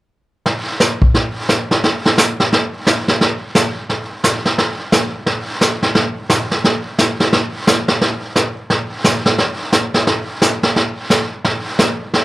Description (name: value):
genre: country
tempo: 175 BPM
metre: 4/4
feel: swing 63% on 8ths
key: none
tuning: none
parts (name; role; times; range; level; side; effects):
- vintage brush drum kit; drums; 0.5-12.2 s; brushed snare drum, hi-hat, kick drum, snare drum; -14 LUFS; equal; none
room: light reverb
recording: none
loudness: -14 LUFS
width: side -18 dB against mid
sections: 0.5-6.0 A section; 6.0-12.2 B section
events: none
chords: none